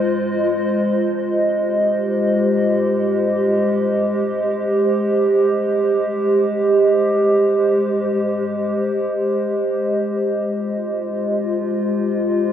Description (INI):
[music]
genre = ambient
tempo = free time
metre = none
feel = none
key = unclear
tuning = A4 = 440 Hz
[part]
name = warbly tape-like pad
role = solo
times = 0.0-12.5 s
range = Ab3 to Eb5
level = -16 LUFS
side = equal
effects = chorus, built-in reverb, tape echo
[sound]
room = wet concert hall reverb, RT60 2.3 s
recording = none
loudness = -16 LUFS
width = side -9 dB against mid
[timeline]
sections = 0.9-12.5 A section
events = none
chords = 0.0 Fm7/Ab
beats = free time